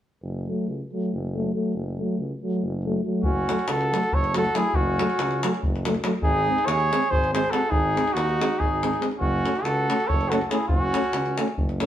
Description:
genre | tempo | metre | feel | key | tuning
balkan folk, Balkan brass band | 282 BPM (eighths) | 7/8 | straight | F# dorian sharp4 | A4 = 438 Hz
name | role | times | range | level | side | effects
warm tuba | bass | 0.2-11.9 s | F#1 to D#2 | -30 LUFS | equal | none
dark euphonium | accompaniment | 0.5-11.9 s | F#3 to A3 | -30 LUFS | right 3 dB | none
mellow euphonium | accompaniment | 0.5-11.9 s | A3 to C#4 | -30 LUFS | left 4 dB | none
warm cornet | melody | 3.2-11.5 s | F#4 to C#5 | -25 LUFS | equal | none
warm flugelhorn | second line | 3.2-11.5 s | C#4 to A4 | -29 LUFS | right 2 dB | none
davul | percussion | 3.2-11.9 s | none | -28 LUFS | left 1 dB | none
room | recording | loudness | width
wet studio reverb, RT60 0.8 s | band playing live in one room | -22 LUFS | side -11 dB against mid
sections
0.2-3.2 A section; 3.2-11.9 B section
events
none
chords
0.2 F#m; 6.2 G#; 9.2 F#m

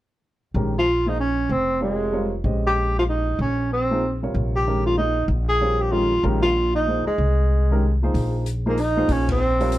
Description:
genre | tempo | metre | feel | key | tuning
modal jazz | 190 BPM | 3/4 | swing 63% on 8ths | Bb dorian | A4 = 440 Hz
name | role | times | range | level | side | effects
upright bass | bass | 0.5-9.8 s | F1 to C2 | -23 LUFS | equal | none
warm grand piano | accompaniment | 0.6-9.7 s | C3 to Eb5 | -26 LUFS | equal | none
breathy tenor saxophone | melody | 0.8-9.8 s | Ab3 to Ab4 | -21 LUFS | equal | plate reverb
open jazz drum kit | drums | 8.1-9.8 s | hi-hat, kick drum, ride cymbal | -32 LUFS | left 2 dB | none
room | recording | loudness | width
light reverb | dark, warm production | -19 LUFS | side -15 dB against mid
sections
0.5-8.1 A section; 8.1-9.8 B section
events
band accent 9.2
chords
0.5 Bbm9; 4.3 Fm7/Bb

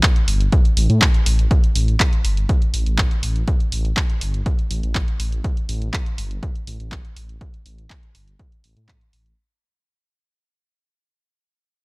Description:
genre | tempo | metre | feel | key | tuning
melodic techno | 122 BPM | 4/4 | straight | unclear | A4 = 440 Hz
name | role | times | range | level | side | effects
electronic kick drum | drums | 0.0-9.0 s | none | -18 LUFS | equal | none
punchy analog drum machine | drums | 0.0-9.4 s | handclaps, hi-hat | -23 LUFS | equal | none
dark detuned saw bass | bass | 0.3-9.3 s | G1 to A2 | -20 LUFS | equal | sidechain pumping
room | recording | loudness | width
little or no reverb | dry, gritty hardware recording, transformer saturation | -17 LUFS | side -27 dB against mid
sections
0.0-1.5 A section; 1.5-9.4 B section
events
drop 0.0-1.5; fade-out 1.5-9.4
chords
none

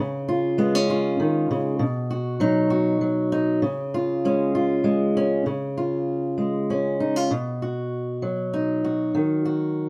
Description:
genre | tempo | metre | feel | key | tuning
folk | 98 BPM | 3/4 | straight | Db mixolydian | A4 = 440 Hz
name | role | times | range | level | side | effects
fingerpicked steel-string acoustic guitar | solo | 0.0-9.9 s | Cb3 to Gb4 | -24 LUFS | equal | none
room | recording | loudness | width
light reverb | close, detailed microphones | -23 LUFS | mono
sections
0.0-5.5 A section; 5.5-9.9 B section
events
none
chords
0.0 Db; 1.8 Cb; 3.6 Db; 7.3 Cb; 9.1 Ebm

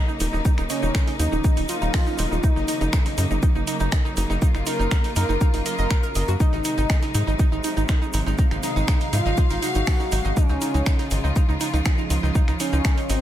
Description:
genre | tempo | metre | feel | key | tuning
melodic techno | 121 BPM | 4/4 | straight | unclear | A4 = 441 Hz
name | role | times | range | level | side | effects
rich symphonic string section | sustained chords | 0.0-13.2 s | C3 to F5 | -30 LUFS | equal | sidechain pumping
analog pluck | arpeggios | 0.0-13.2 s | Eb4 to Eb5 | -30 LUFS | right 3 dB | chorus, sidechain pumping, digital delay
egg shaker | percussion | 0.1-13.2 s | none | -38 LUFS | left 4 dB | none
tight sequencer bass | bass | 0.2-13.2 s | Eb1 to Ab2 | -23 LUFS | equal | sidechain pumping
breakbeat sampler-style drum kit | drums | 0.2-13.2 s | hi-hat, shaker, snare drum | -39 LUFS | left 1 dB | none
house drum kit | drums | 0.2-13.2 s | finger snaps, hi-hat | -30 LUFS | right 2 dB | none
electronic kick drum | drums | 0.5-12.9 s | none | -20 LUFS | equal | none
wide unison lead | melody | 0.7-13.2 s | C4 to Bb4 | -29 LUFS | equal | ping-pong delay
room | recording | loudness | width
little or no reverb | none | -19 LUFS | side -12 dB against mid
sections
0.0-13.2 A section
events
none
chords
0.0 Ebm7; 2.4 Gb6; 6.4 Ab7; 10.4 Db

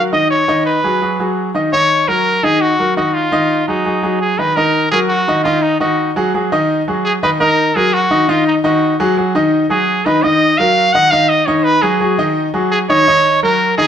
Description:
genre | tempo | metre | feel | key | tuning
latin | 169 BPM | 4/4 | straight | Eb minor | A4 = 440 Hz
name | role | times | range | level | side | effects
bright trumpet | melody | 0.0-13.9 s | Eb4 to Gb5 | -14 LUFS | right 1 dB | none
bright grand piano | accompaniment | 0.0-13.9 s | Eb3 to Eb5 | -15 LUFS | left 1 dB | none
room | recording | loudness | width
moderate large studio reverb, RT60 1.1 s | none | -12 LUFS | side -9 dB against mid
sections
0.0-4.6 A section; 4.6-13.9 B section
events
none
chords
0.3 Abm7; 1.7 Ebm7; 3.1 Ab5; 4.6 Ebm; 6.0 Ab5; 7.4 Ebm; 8.8 Ab5; 10.2 Ebm; 11.7 Ab5; 13.1 Ebm7

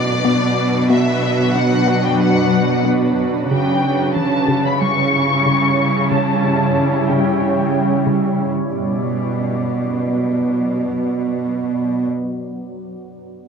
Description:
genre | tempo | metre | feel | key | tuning
cinematic | 92 BPM | 4/4 | straight | B minor | A4 = 441 Hz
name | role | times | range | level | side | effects
warm symphonic violin section | melody | 0.0-12.1 s | D5 to C#6 | -22 LUFS | left 4 dB | low-pass filter
granular cloud pad | sustained chords | 0.0-12.1 s | F#3 to D5 | -20 LUFS | right 1 dB | built-in reverb, low-pass filter
rich symphonic cello section | bass | 0.0-12.1 s | B2 to C#3 | -19 LUFS | right 2 dB | none
woody wave-folded pluck | arpeggios | 0.2-8.3 s | C#3 to B4 | -24 LUFS | left 4 dB | none
room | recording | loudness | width
moderate scoring stage reverb, RT60 1.6 s | close, detailed microphones | -15 LUFS | side -6 dB against mid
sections
0.0-8.7 A section; 8.7-11.3 B section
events
filter sweep 0.0-8.7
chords
0.0 Bm; 3.5 C#dim; 8.7 Bm

